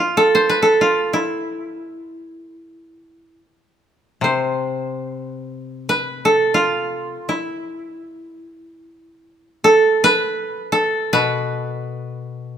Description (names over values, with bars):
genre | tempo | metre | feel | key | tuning
japanese traditional, Japanese chamber music | free time | none | none | unclear | A4 = 440 Hz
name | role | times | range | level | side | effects
koto | melody | 0.0-12.6 s | E4 to C5 | -16 LUFS | right 1 dB | none
koto | accompaniment | 4.2-12.6 s | B2 to C3 | -24 LUFS | left 5 dB | none
room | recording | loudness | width
light reverb | close, detailed microphones | -16 LUFS | side -8 dB against mid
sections
0.0-12.6 A section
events
none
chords
none